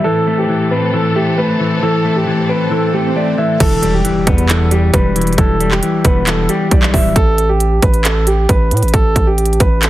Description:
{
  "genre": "hip hop, trap",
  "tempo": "135 BPM",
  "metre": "4/4",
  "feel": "half-time",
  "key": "E minor",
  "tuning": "A4 = 440 Hz",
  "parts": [
    { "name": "dark grand piano", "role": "melody", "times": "0.0-9.9 s", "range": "G4 to E5", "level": "-17 LUFS", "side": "right 2 dB", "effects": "low-pass filter" },
    { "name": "semi-hollow electric guitar", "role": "accompaniment", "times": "0.0-7.2 s", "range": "E3 to C4", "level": "-16 LUFS", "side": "left 4 dB", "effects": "low-pass filter" },
    { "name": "rich studio string section", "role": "sustained chords", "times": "0.0-3.6 s", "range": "A2 to A4", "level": "-21 LUFS", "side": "right 1 dB", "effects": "low-pass filter" },
    { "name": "downlifter, swell and impact", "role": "sound effects", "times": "2.5-5.4 s", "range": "none", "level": "-25 LUFS", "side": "right 2 dB", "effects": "none" },
    { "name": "distorted 808-style bass", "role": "bass", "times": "3.6-9.9 s", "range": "D1 to A2", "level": "-15 LUFS", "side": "equal", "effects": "distortion" },
    { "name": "trap drum kit", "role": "drums", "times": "3.6-9.9 s", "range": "crash cymbal, handclaps, hi-hat, kick drum", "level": "-15 LUFS", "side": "right 1 dB", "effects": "none" }
  ],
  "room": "little or no reverb",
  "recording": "heavily compressed radio sound, multiband compression",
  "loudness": "-11 LUFS",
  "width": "side -15 dB against mid",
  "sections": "0.0-3.6 A section; 3.6-9.9 B section",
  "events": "swell 2.5-3.6; impact 3.6-5.4",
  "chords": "0.0 Am; 3.6 Em; 7.2 A7sus2"
}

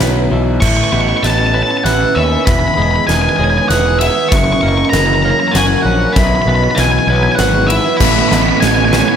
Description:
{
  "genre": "post-rock",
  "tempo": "97 BPM",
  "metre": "3/4",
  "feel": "straight",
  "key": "A lydian",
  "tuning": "A4 = 440 Hz",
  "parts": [
    { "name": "airy breathy pad", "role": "sustained chords", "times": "0.0-9.2 s", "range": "D#3 to B4", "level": "-22 LUFS", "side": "right 1 dB", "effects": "chorus" },
    { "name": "twelve-string electric guitar", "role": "arpeggios", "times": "0.0-9.2 s", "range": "E2 to G#4", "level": "-20 LUFS", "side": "left 3 dB", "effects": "analog delay" },
    { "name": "vibraphone with soft mallets", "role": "arpeggios", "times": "0.0-9.2 s", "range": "A#4 to E5", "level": "-21 LUFS", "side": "right 7 dB", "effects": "analog delay" },
    { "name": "fuzz picked electric bass", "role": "bass", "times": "0.0-9.0 s", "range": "E1 to D#2", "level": "-16 LUFS", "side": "equal", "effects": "overdrive" },
    { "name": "huge arena drum kit", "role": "drums", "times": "0.0-9.1 s", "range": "crash cymbal, kick drum, ride cymbal, snare drum", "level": "-18 LUFS", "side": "left 1 dB", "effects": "none" },
    { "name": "octave-fuzz lead guitar", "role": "melody", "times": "0.6-9.2 s", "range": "E5 to C#6", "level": "-16 LUFS", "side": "left 1 dB", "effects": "distortion, analog delay" },
    { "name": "thick fuzz guitar", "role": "riff", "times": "8.0-9.2 s", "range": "A3 to B3", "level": "-15 LUFS", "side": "right 13 dB", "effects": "distortion" }
  ],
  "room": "light reverb, small room ambience",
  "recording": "none",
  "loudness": "-10 LUFS",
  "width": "side -8 dB against mid",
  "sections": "0.6-9.2 A section",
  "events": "build-up 0.6-9.2; drum fill 0.6-9.2",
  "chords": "0.0 Bsus4; 0.6 Aadd9; 2.5 Emaj7; 4.3 F#7; 6.2 Bsus4; 8.0 Aadd9"
}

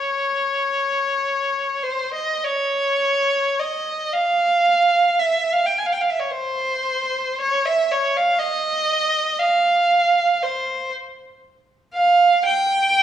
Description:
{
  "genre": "classical, free, expressive piece for unaccompanied violin",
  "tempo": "49-62 BPM",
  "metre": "4/4",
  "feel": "rubato",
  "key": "unclear",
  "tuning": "A4 = 440 Hz",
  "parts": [
    { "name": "rich violin", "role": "solo", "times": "0.0-13.0 s", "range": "C5 to Ab5", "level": "-17 LUFS", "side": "right 1 dB", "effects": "none" }
  ],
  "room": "moderate recital hall reverb, RT60 1.5 s",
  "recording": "small room ambience",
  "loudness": "-17 LUFS",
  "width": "side -10 dB against mid",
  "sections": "0.0-13.0 A section",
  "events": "none",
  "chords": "none"
}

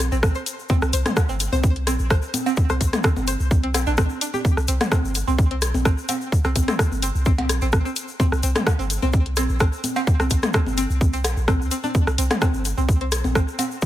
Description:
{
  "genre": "minimal techno",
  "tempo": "128 BPM",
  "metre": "4/4",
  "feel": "swing 53% on 16ths",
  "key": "unclear",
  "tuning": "A4 = 442 Hz",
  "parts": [
    { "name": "punchy sub bass", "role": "bass", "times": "0.0-13.4 s", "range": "G1 to D2", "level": "-23 LUFS", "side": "equal", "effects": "sidechain pumping" },
    { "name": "egg shaker", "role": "percussion", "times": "0.0-13.9 s", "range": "none", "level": "-33 LUFS", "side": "left 6 dB", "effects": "none" },
    { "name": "organic electronic drum kit", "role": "percussion", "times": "0.0-13.7 s", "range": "congas, cowbell, rim click, toms", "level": "-26 LUFS", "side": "left 1 dB", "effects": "digital delay" },
    { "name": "string-like resonator pluck", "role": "riff", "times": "0.1-13.6 s", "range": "C4 to C5", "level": "-29 LUFS", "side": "right 1 dB", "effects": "chorus, phaser, sidechain pumping, digital delay" },
    { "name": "electronic kick drum", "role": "drums", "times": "0.2-13.9 s", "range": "none", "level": "-19 LUFS", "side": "equal", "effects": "none" },
    { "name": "garage drum kit", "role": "drums", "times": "0.2-13.7 s", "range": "hi-hat, rim click", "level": "-26 LUFS", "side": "equal", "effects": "none" }
  ],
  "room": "digital ambience",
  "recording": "none",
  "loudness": "-18 LUFS",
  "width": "side -13 dB against mid",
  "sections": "0.0-13.9 A section",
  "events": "none",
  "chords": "0.0 C5"
}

